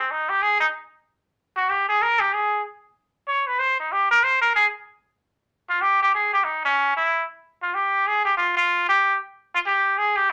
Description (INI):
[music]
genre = jazz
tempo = 188 BPM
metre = 3/4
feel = swing 62% on 8ths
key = unclear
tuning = A4 = 441 Hz
[part]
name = trumpet with straight mute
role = solo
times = 0.0-10.3 s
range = C4 to Db5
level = -21 LUFS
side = equal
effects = none
[sound]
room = moderate studio reverb, RT60 0.6 s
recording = none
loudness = -21 LUFS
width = mono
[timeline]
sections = 0.0-5.5 A section; 5.5-10.3 B section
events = muted trumpet solo 0.0-5.5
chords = none